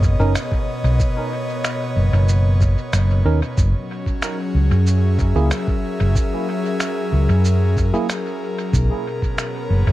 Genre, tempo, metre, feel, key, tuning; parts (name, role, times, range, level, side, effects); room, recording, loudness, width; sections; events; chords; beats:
ambient dub; 93 BPM; 4/4; straight; F# mixolydian; A4 = 439 Hz
airy breathy pad; sustained chords; 0.0-9.9 s; B2 to E5; -24 LUFS; left 1 dB; chorus
hollow-body short-scale fingered electric bass; bass; 0.0-9.9 s; F#1 to F#2; -16 LUFS; equal
electronic cabasa and finger snaps; drums; 0.0-9.5 s; -28 LUFS; equal; studio reverb, dub echo
electronic kick drum; drums; 0.0-9.4 s; -20 LUFS; equal; studio reverb
tine electric piano; stabs; 0.2-8.1 s; A#3 to A#4; -26 LUFS; right 4 dB; medium stereo tremolo, dub echo
little or no reverb; echo-heavy mix; -17 LUFS; side -16 dB against mid
0.0-9.9 A section
0.0 Bmaj7; 3.6 F#9; 8.7 Bmaj7(no3)
0.35 | 1.00 1.64 2.29 2.93 | 3.58 4.22 4.87 5.51 | 6.16 6.80 7.45 8.10 | 8.74 9.38